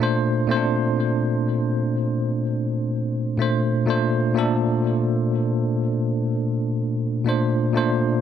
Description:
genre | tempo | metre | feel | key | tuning
R&B | 62 BPM | 4/4 | straight | Bb major | A4 = 445 Hz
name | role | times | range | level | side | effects
bell-like tine electric piano | solo | 0.0-8.2 s | Bb2 to C5 | -20 LUFS | equal | medium stereo tremolo, tape echo
room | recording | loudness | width
light reverb | none | -20 LUFS | side -9 dB against mid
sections
0.0-8.2 A section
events
none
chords
0.0 Bbmaj9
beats
| 0.00 0.96 1.93 2.90 | 3.87 4.84 5.80 6.77 | 7.74

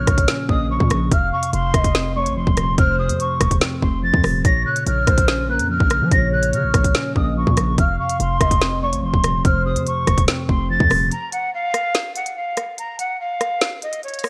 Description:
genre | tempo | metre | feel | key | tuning
hip hop, drill | 144 BPM | 4/4 | half-time | unclear | A4 = 440 Hz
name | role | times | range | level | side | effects
jazz flute | melody | 0.0-14.3 s | Db5 to Bb6 | -25 LUFS | equal | low-pass filter
gliding portamento lead | second line | 0.0-10.2 s | Bb4 to F5 | -30 LUFS | equal | chorus, delay
mellow tine electric piano | accompaniment | 0.0-11.1 s | F2 to Db4 | -26 LUFS | equal | low-pass filter
hard-hitting 808-style bass | bass | 0.0-11.1 s | Eb1 to F3 | -25 LUFS | equal | none
drill drum kit | drums | 0.1-14.3 s | hi-hat, kick drum, rim click, snare drum | -21 LUFS | equal | vintage 12-bit sampler grit
room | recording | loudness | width
light reverb | bright 1980s-style digital production | -19 LUFS | mono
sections
0.0-11.1 A section; 11.1-14.3 B section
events
break 11.1-14.3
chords
0.0 Bbm; 1.1 F; 4.4 Bbm; 7.8 F; 11.1 N.C.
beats
0.28 0.70 | 1.11 1.53 1.95 2.37 | 2.78 3.20 3.62 4.03 | 4.45 4.87 5.28 5.70 | 6.12 6.53 6.95 7.37 | 7.78 8.20 8.62 9.03 | 9.45 9.87 10.28 10.70 | 11.12 11.53 11.95 12.37 | 12.78 13.20 13.62 14.03

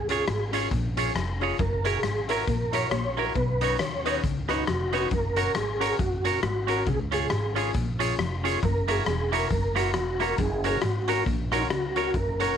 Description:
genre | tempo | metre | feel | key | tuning
ska | 136 BPM | 4/4 | swing 59% on 8ths | F# major | A4 = 440 Hz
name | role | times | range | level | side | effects
mellow tonewheel organ | melody | 0.0-12.6 s | D#4 to C#5 | -30 LUFS | right 1 dB | chorus vibrato, fast rotary speaker
upright bass | bass | 0.0-12.5 s | E1 to D#2 | -30 LUFS | right 1 dB | none
clean electric guitar | accompaniment | 0.1-12.5 s | A#3 to C#5 | -28 LUFS | right 14 dB | none
warm upright piano | stabs | 0.1-12.5 s | C#4 to B4 | -32 LUFS | left 11 dB | none
raw garage drum kit | drums | 0.1-12.5 s | hi-hat, kick drum, rim click | -31 LUFS | left 2 dB | none
clean electric guitar | riff | 0.3-11.9 s | E2 to D#3 | -34 LUFS | left 6 dB | slapback echo
room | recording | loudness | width
light reverb | 1960s-style stereo with parts hard left and right | -24 LUFS | side -8 dB against mid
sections
0.0-12.1 A section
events
none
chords
0.0 C#; 1.6 F#7; 3.4 Badd9; 5.1 F#; 6.9 C#; 8.6 F#7; 10.4 F#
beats
0.27 0.71 1.16 | 1.59 2.04 2.48 2.92 | 3.35 3.80 4.24 4.67 | 5.12 5.55 6.00 6.43 | 6.87 7.31 7.75 8.19 | 8.63 9.07 9.51 9.95 | 10.39 10.83 11.27 11.71 | 12.15

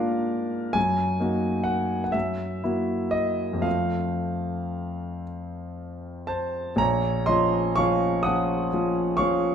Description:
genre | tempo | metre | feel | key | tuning
classical, romantic nocturne for solo piano | 37-49 BPM (dotted quarters) | 6/8 | rubato | Bb minor | A4 = 441 Hz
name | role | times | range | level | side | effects
warm concert grand piano | solo | 0.0-9.5 s | Bb1 to Eb6 | -23 LUFS | equal | none
room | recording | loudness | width
wet recital hall reverb, RT60 1.8 s | minimal, uncompressed stereo recording | -23 LUFS | side -8 dB against mid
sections
0.0-6.8 A section; 6.8-9.5 B section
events
none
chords
0.0 Bb7/Ab; 0.8 Ebm/Gb; 2.1 Gb7; 3.6 F; 6.8 Bbm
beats
| 0.76 2.14 | 3.65 5.24 | 6.79 8.23

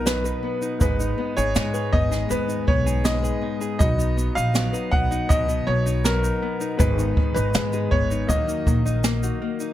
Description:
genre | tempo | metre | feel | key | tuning
acoustic pop | 80 BPM | 4/4 | straight | unclear | A4 = 440 Hz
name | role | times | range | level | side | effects
bright upright piano | melody | 0.0-9.4 s | Bb4 to F#5 | -26 LUFS | equal | digital delay
clear upright piano | accompaniment | 0.0-9.7 s | Bb3 to D#5 | -36 LUFS | left 3 dB | none
nylon-string guitar | accompaniment | 0.0-9.7 s | Ab2 to Cb5 | -28 LUFS | left 7 dB | none
direct-recorded clean electric guitar | arpeggios | 0.0-9.7 s | Eb3 to Ab4 | -32 LUFS | right 6 dB | none
upright bass | bass | 0.0-9.3 s | Ab1 to Ab2 | -25 LUFS | equal | none
jazz brush drum kit | drums | 0.1-9.7 s | kick drum, shaker, snare drum | -23 LUFS | right 1 dB | none
room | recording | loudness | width
light reverb | none | -20 LUFS | side -12 dB against mid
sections
0.0-9.7 A section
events
none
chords
0.0 B; 0.8 Abm; 3.8 B; 6.8 Abm; 8.3 Ebm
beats
0.06 | 0.81 1.56 2.31 3.05 | 3.80 4.55 5.30 6.05 | 6.80 7.54 8.29 9.04

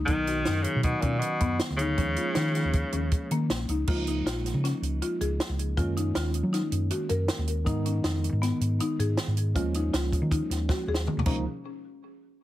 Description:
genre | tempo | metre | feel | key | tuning
progressive instrumental, band music in an uneven meter | 158 BPM | 5/4 | straight | unclear | A4 = 440 Hz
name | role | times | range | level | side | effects
bright tine electric piano | accompaniment | 0.0-11.4 s | Eb3 to Eb4 | -34 LUFS | right 3 dB | medium stereo tremolo, plate reverb
buzzing marimba with medium mallets | arpeggios | 0.0-11.4 s | Bb3 to Bb4 | -32 LUFS | left 4 dB | plate reverb, ping-pong delay
hollow-body short-scale fingered electric bass | bass | 0.0-11.4 s | Bb1 to Gb3 | -28 LUFS | equal | none
bright tenor saxophone | melody | 0.1-3.4 s | Bb2 to Eb3 | -29 LUFS | equal | plate reverb
compact cocktail drum kit | drums | 0.1-11.4 s | crash cymbal, hi-hat, kick drum, snare drum, toms | -30 LUFS | right 1 dB | none
room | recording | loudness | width
moderate studio ambience, RT60 0.5 s | heavily compressed radio sound, multiband compression | -25 LUFS | side -14 dB against mid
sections
0.0-3.9 A section; 3.9-11.5 B section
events
drum fill 10.7-11.5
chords
0.1 Cb; 2.0 Eb7sus4; 5.8 Gb6; 7.7 Abm; 9.6 Eb7sus4; 11.3 Db6; 11.5 N.C.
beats
| 0.09 0.47 0.85 1.23 1.60 | 1.98 2.36 2.74 3.12 3.50 | 3.88 4.26 4.63 5.01 5.39 | 5.77 6.15 6.53 6.91 7.29 | 7.67 8.05 8.43 8.80 9.19 | 9.56 9.94 10.32 10.70 11.08

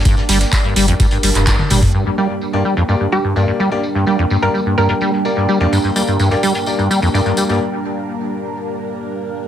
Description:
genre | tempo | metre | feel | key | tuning
acid house | 127 BPM | 4/4 | straight | G minor pentatonic | A4 = 440 Hz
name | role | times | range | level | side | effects
lush unison pad | sustained chords | 0.0-9.5 s | G3 to D5 | -22 LUFS | right 1 dB | chorus, phaser, vintage 12-bit sampler grit, sidechain pumping
acid bass, saw | riff | 0.0-7.6 s | F2 to G3 | -17 LUFS | equal | analog chorus, vintage 12-bit sampler grit, sidechain pumping, ping-pong delay
warm soul drum kit | drums | 0.0-7.6 s | hi-hat, snare drum, tambourine | -30 LUFS | equal | sidechain pumping on hats, high-pass filter on hats, low-pass filter on hats, high-pass filter on snare, low-pass filter on snare, sidechain pumping on perc, high-pass filter on perc, low-pass filter on perc, high-pass filter on room, low-pass filter on room
warbly tape-like pad | texture | 0.0-7.6 s | D4 to G5 | -26 LUFS | right 2 dB | chorus, built-in reverb, sidechain pumping
booming analog drum machine | drums | 0.1-1.9 s | handclaps, hi-hat, toms | -18 LUFS | equal | overdrive, low-pass filter on hats, low-pass filter on snare, low-pass filter on toms, low-pass filter on room
electronic kick drum | drums | 0.1-1.9 s | none | -15 LUFS | equal | overdrive
tambourine | percussion | 0.1-1.9, 5.7-7.6 s | none | -26 LUFS | left 2 dB | none
warm sub bass | bass | 0.3-1.9 s | F1 to G1 | -17 LUFS | equal | sidechain pumping
clear grand piano | stabs | 2.2-7.6 s | Bb3 to D5 | -22 LUFS | left 4 dB | ping-pong delay
hollow square pluck | melody | 3.1-5.0 s | G4 to Bb4 | -21 LUFS | right 2 dB | chorus, digital delay
room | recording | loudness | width
moderate spring reverb, RT60 1.2 s | none | -14 LUFS | side -10 dB against mid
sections
0.0-1.9 A section; 1.9-9.5 B section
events
band accent 1.5; drum fill 1.6-1.9; filter sweep on acid bass 1.9-9.5; filter sweep on analog synth pad 1.9-9.5; break 7.6-9.5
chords
0.0 Gm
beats
| 0.05 0.53 1.00 1.47 | 1.94 2.42 2.89 3.36 | 3.83 4.30 4.78 5.25 | 5.72 6.20 6.67 7.14 | 7.61 8.09 8.56 9.03

